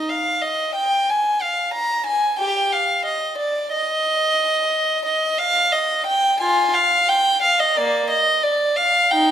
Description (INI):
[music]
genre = classical, baroque-style suite movement for unaccompanied violin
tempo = 90 BPM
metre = 4/4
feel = rubato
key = unclear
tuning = A4 = 442 Hz
[part]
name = rich violin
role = solo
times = 0.0-9.3 s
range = Bb3 to Bb5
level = -17 LUFS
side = equal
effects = none
[sound]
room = moderate recital hall reverb, RT60 1.6 s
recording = minimal, uncompressed stereo recording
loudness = -17 LUFS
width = side -10 dB against mid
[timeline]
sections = 0.0-9.3 A section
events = none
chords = none